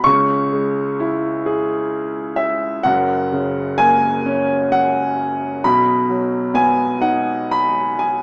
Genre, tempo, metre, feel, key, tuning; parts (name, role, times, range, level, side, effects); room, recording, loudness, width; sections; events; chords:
classical, lyrical solo piano; 43 BPM (dotted quarters); 6/8; rubato; B major; A4 = 441 Hz
warm concert grand piano; solo; 0.0-8.2 s; F#1 to C#6; -18 LUFS; equal
moderate concert hall reverb, RT60 2.0 s; small speaker sound; -18 LUFS; mono
0.0-8.2 A section
0.1 C#m; 2.8 F#; 5.6 B